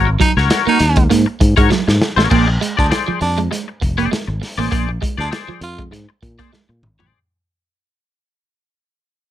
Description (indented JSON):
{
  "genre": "funk",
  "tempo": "100 BPM",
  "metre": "4/4",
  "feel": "swing 56% on 16ths",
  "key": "Bb mixolydian",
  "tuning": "A4 = 440 Hz",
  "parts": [
    { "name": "twangy electric guitar", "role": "accompaniment", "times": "0.0-7.2 s", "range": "Gb4 to D5", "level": "-20 LUFS", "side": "left 8 dB", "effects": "analog chorus" },
    { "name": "electric guitar at the edge of break-up", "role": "riff", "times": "0.0-7.1 s", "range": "F3 to Bb3", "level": "-20 LUFS", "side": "right 8 dB", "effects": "wide subtle chorus" },
    { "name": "fingered electric bass", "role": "bass", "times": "0.0-7.1 s", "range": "F1 to Bb2", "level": "-17 LUFS", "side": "equal", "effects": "none" },
    { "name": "raspy baritone saxophone", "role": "second line", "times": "0.2-5.8 s", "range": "D4 to F4", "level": "-18 LUFS", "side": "right 3 dB", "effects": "none" },
    { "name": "crunchy breakbeat drum kit", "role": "drums", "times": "0.2-7.1 s", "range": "crash cymbal, hi-hat, kick drum, snare drum, toms", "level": "-18 LUFS", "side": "equal", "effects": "none" }
  ],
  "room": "light reverb",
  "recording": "none",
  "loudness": "-13 LUFS",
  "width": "side -12 dB against mid",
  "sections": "0.0-2.3 A section; 2.3-7.1 B section",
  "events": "band accent 0.0-2.3; drum fill 1.7-2.3, 6.5-7.1; fade-out 2.3-7.1",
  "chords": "0.0 Ab9sus4; 2.3 Bb9"
}